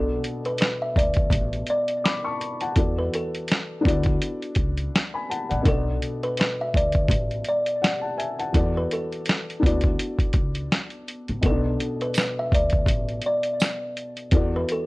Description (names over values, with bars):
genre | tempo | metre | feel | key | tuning
lo-fi hip hop | 83 BPM | 4/4 | swing 56% on 16ths | B minor | A4 = 441 Hz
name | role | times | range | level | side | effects
kalimba | melody | 0.0-14.9 s | A4 to E5 | -27 LUFS | equal | low-pass filter, plate reverb
felt-muted upright piano | accompaniment | 0.0-14.9 s | B2 to D6 | -29 LUFS | left 2 dB | cassette tape, low-pass filter, plate reverb
upright bass | bass | 0.0-14.6 s | A1 to E2 | -26 LUFS | equal | none
lo-fi sampler-style drum kit | drums | 0.2-14.9 s | hi-hat, kick drum, snare drum | -23 LUFS | equal | vintage 12-bit sampler grit
tambourine | percussion | 12.1-13.8 s | none | -36 LUFS | right 4 dB | none
room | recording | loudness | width
light reverb | cassette tape, lossy compression artefacts | -21 LUFS | side -22 dB against mid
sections
0.0-14.9 A section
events
none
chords
0.0 Bm7; 2.8 E9sus4; 3.8 D6; 5.6 Bm7; 8.5 E9sus4; 9.6 D6; 11.4 Bm7; 14.3 E9sus4